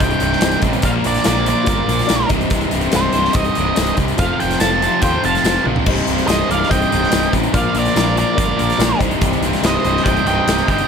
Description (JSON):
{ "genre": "classic rock", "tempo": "143 BPM", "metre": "4/4", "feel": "straight", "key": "C minor", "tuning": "A4 = 440 Hz", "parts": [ { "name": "octave-fuzz lead guitar", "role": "melody", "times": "0.0-10.9 s", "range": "C5 to A5", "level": "-20 LUFS", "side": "right 3 dB", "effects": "distortion" }, { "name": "honky-tonk upright piano", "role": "accompaniment", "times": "0.0-10.8 s", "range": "D4 to D6", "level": "-27 LUFS", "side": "left 10 dB", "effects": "plate reverb" }, { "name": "overdriven tonewheel organ", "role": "sustained chords", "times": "0.0-10.9 s", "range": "Bb3 to C5", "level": "-31 LUFS", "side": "right 1 dB", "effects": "none" }, { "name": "biting overdriven guitar", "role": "riff", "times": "0.0-10.9 s", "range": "C2 to Bb3", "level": "-23 LUFS", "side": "left 15 dB", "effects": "spring reverb" }, { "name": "crunchy overdriven guitar", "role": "riff", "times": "0.0-10.9 s", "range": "C2 to Bb3", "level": "-23 LUFS", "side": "right 12 dB", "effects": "none" }, { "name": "crunchy overdriven guitar", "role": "riff", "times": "0.0-10.7 s", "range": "C2 to Bb3", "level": "-24 LUFS", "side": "equal", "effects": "none" }, { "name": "growling picked electric bass", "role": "bass", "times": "0.0-10.8 s", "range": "C1 to Eb2", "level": "-22 LUFS", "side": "equal", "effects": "overdrive" }, { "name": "big rock drum kit", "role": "drums", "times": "0.0-10.9 s", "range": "crash cymbal, hi-hat, kick drum, snare drum, toms", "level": "-20 LUFS", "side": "equal", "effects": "none" }, { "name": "tambourine", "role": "percussion", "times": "0.4-10.6 s", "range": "none", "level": "-32 LUFS", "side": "left 18 dB", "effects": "none" }, { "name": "octave-fuzz lead guitar", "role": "second line", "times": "5.0-10.9 s", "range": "Bb4 to F5", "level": "-25 LUFS", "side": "right 5 dB", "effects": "distortion, plate reverb" } ], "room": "light reverb", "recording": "none", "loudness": "-14 LUFS", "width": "side -6 dB against mid", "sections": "0.0-10.9 A section", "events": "drum fill 5.7", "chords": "0.0 Cm; 0.8 Bb; 2.3 Cm; 4.2 F; 5.9 Cm; 7.5 Bb; 9.0 Cm", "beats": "0.00 0.42 | 0.84 1.26 1.68 2.10 | 2.52 2.94 3.36 3.78 | 4.20 4.61 5.03 5.45 | 5.87 6.29 6.71 7.12 | 7.54 7.96 8.38 8.80 | 9.22 9.64 10.05 10.47" }